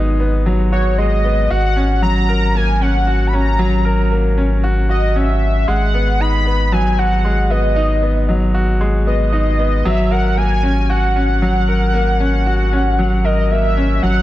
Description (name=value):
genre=piano and strings electronica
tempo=115 BPM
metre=4/4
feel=straight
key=unclear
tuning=A4 = 439 Hz
part: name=clear baby grand piano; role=riff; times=0.0-14.2 s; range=F#3 to A#4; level=-19 LUFS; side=equal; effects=none
part: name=warm sub bass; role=bass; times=0.0-14.2 s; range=G#1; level=-16 LUFS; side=equal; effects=none
part: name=warm velvety synth lead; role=melody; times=0.7-14.2 s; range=C#5 to B5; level=-20 LUFS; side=equal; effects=chorus
room=light reverb, small room ambience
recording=none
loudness=-13 LUFS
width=side -15 dB against mid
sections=0.0-14.2 A section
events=none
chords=0.0 G#m7; 1.5 F#/G#; 5.7 G#m7; 9.9 F#/G#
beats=0.46 0.98 | 1.51 2.03 2.55 3.07 | 3.59 4.12 4.64 5.16 | 5.68 6.20 6.72 7.25 | 7.77 8.29 8.81 9.33 | 9.85 10.38 10.90 11.42 | 11.94 12.46 12.98 13.51 | 14.03